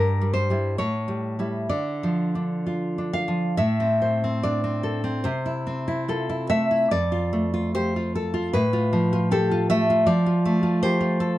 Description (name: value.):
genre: romantic piece for solo classical guitar.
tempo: 61-80 BPM.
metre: 2/4.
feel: rubato.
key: D minor, A minor from 3.6 s.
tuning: A4 = 440 Hz.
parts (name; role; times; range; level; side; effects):
nylon-string guitar; solo; 0.0-11.4 s; F2 to F5; -21 LUFS; equal; none.
room: light reverb.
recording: dark, warm production.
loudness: -21 LUFS.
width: side -15 dB against mid.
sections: 0.0-3.6 A section; 3.6-11.4 B section.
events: none.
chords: 0.0 Edim/G; 0.8 A7; 1.7 Dm; 3.6 Am; 5.2 Am/C; 6.9 F; 8.5 F/A; 10.1 F.